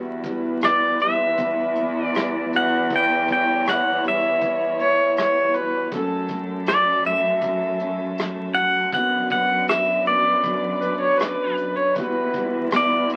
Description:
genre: acoustic folk-pop ballad.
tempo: 79 BPM.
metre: 4/4.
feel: straight.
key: E dorian.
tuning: A4 = 442 Hz.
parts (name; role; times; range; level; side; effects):
fingerpicked steel-string acoustic guitar; accompaniment; 0.0-13.2 s; E2 to F#4; -31 LUFS; equal; none.
dark chamber string section; sustained chords; 0.0-13.2 s; E3 to D5; -36 LUFS; equal; none.
warm cello; bass; 0.0-13.2 s; E2 to F#2; -32 LUFS; equal; none.
soft brush drum kit; drums; 0.2-13.2 s; hi-hat, kick drum, rim click; -30 LUFS; equal; none.
pedal steel guitar; melody; 0.6-13.1 s; D5 to G5; -22 LUFS; equal; none.
warm viola; second line; 4.8-12.5 s; A4 to C#5; -24 LUFS; equal; none.
room: wet club reverb, RT60 0.6 s.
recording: very old 78 rpm record, vinyl crackle.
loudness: -21 LUFS.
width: mono.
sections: 0.0-13.2 A section.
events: none.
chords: 0.0 Emadd9; 5.9 F#m; 8.9 Bm/F#; 12.0 Emadd9.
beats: 0.63 1.39 2.15 | 2.91 3.66 4.42 5.17 | 5.92 6.67 7.42 8.18 | 8.93 9.68 10.44 11.21 | 11.97 12.73.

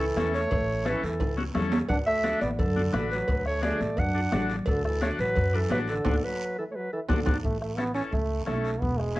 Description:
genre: latin, cumbia.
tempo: 173 BPM.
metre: 4/4.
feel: straight.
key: A major.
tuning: A4 = 440 Hz.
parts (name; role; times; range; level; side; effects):
warm clarinet; melody; 0.0-7.3 s; A4 to F#5; -29 LUFS; equal; none.
bright trombone; second line; 0.0-9.2 s; D3 to D4; -32 LUFS; right 2 dB; none.
overdriven combo organ; accompaniment; 0.0-9.2 s; B3 to B4; -34 LUFS; left 2 dB; phaser.
upright bass; bass; 0.0-9.2 s; E1 to F#2; -30 LUFS; equal; none.
bombo; percussion; 0.2-9.2 s; none; -31 LUFS; equal; none.
congas; percussion; 0.2-9.2 s; none; -34 LUFS; left 3 dB; none.
cowbell and timbales; percussion; 0.2-7.3 s; none; -34 LUFS; right 3 dB; none.
guiro; percussion; 0.2-9.2 s; none; -45 LUFS; right 2 dB; none.
room: moderate studio reverb, RT60 0.8 s.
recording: worn, warbling old tape, cassette tape, warbly pitch drift.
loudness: -24 LUFS.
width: side -17 dB against mid.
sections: 0.0-7.4 A section; 7.4-9.2 B section.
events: drum fill 1.2-1.9, 6.7-7.4; band accent 6.0-7.4; trombone solo 7.4-9.2.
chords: 0.0 A; 1.9 D; 7.4 A.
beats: 0.17 | 0.51 0.86 1.20 1.55 | 1.90 2.24 2.59 2.93 | 3.28 3.63 3.97 4.32 | 4.66 5.01 5.36 5.70 | 6.05 6.39 6.74 7.09 | 7.43 7.78 8.12 8.47 | 8.82 9.16.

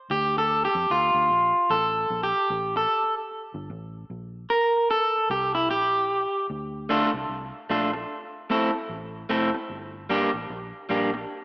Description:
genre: roots reggae.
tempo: 75 BPM.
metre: 4/4.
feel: swing 61% on 16ths.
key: D minor.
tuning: A4 = 442 Hz.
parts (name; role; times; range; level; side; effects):
electric guitar at the edge of break-up; accompaniment; 0.1-11.2 s; G3 to Bb4; -22 LUFS; equal; spring reverb, tape echo.
vintage muted fingered electric bass; bass; 0.1-11.2 s; F1 to F2; -36 LUFS; equal; none.
room: light reverb.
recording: AM radio sound.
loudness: -22 LUFS.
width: side -21 dB against mid.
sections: 0.0-6.5 A section; 6.5-11.4 B section.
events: clean electric guitar solo 0.0-6.5.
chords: 0.1 Dm; 1.7 Gmadd9/A; 3.3 N.C.; 4.9 C5; 6.5 Dm; 8.1 Am; 9.7 Gm.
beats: | 0.10 0.90 1.70 2.50 | 3.30 4.09 4.89 5.69 | 6.49 7.29 8.09 8.89 | 9.69 10.49.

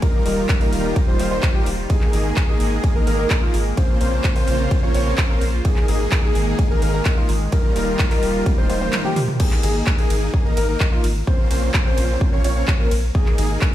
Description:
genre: EDM, festival progressive house.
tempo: 128 BPM.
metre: 4/4.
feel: straight.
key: Ab major.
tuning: A4 = 440 Hz.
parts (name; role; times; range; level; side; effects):
supersaw pad; sustained chords; 0.0-9.4 s; Db3 to C5; -28 LUFS; equal; phaser, sidechain pumping.
dark concert grand piano; arpeggios; 0.0-13.7 s; F4 to Db5; -27 LUFS; left 1 dB; sidechain pumping, ping-pong delay.
dense compressed supersaw; riff; 0.0-13.7 s; G3 to Db5; -25 LUFS; equal; sidechain pumping, ping-pong delay.
big-room dance drum kit; drums; 0.0-13.7 s; crash cymbal, handclaps, hi-hat, ride cymbal, toms; -27 LUFS; equal; none.
electronic kick drum; drums; 0.0-13.7 s; none; -18 LUFS; equal; none.
saturated sub bass; bass; 0.3-13.6 s; Eb1 to Bb1; -22 LUFS; equal; sidechain pumping.
room: light reverb.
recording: played on a big sound system in a bare room, stone room reverb.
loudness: -16 LUFS.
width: side -13 dB against mid.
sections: 0.0-9.4 A section; 9.4-13.7 A section.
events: drop 0.0-9.4, 9.4-13.7; drum fill 8.5-9.4; kick drops out 8.9-9.4.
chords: 0.0 Ebadd9; 1.9 Absus2; 3.8 Bbmadd9; 5.6 Absus2; 7.5 Ebadd9; 9.4 Absus2; 11.3 Bbmadd9; 13.1 Absus2.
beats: | 0.02 0.49 0.96 1.43 | 1.90 2.37 2.84 3.31 | 3.77 4.24 4.71 5.18 | 5.65 6.12 6.59 7.05 | 7.52 7.99 8.46 8.93 | 9.40 9.87 10.34 10.80 | 11.27 11.74 12.21 12.68 | 13.15 13.62.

